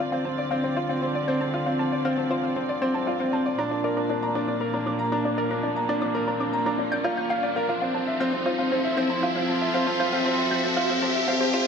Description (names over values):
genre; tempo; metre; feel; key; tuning
piano and strings electronica; 117 BPM; 4/4; straight; D minor; A4 = 440 Hz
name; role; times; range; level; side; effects
warm studio string section; sustained chords; 0.0-11.7 s; Bb2 to E5; -29 LUFS; equal; none
analog pluck; arpeggios; 0.0-11.6 s; C5 to G6; -31 LUFS; left 1 dB; chorus, digital delay
clear grand piano; riff; 0.0-11.7 s; C4 to Bb5; -25 LUFS; equal; digital delay
round analog bass; bass; 0.0-11.0 s; none; barely audible; none; none
riser; sound effects; 1.9-11.7 s; none; -31 LUFS; equal; none
room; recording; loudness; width
wet lush hall reverb, RT60 1.8 s, small room ambience; high-pass filter; -22 LUFS; side -6 dB against mid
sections
0.0-11.7 A section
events
build-up 0.0-11.7; filter sweep on synth arpeggio sound 0.0-11.7; filter sweep 0.0-11.7; riser 1.9-11.7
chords
0.0 Dm7; 3.6 Bb; 7.7 Fmaj7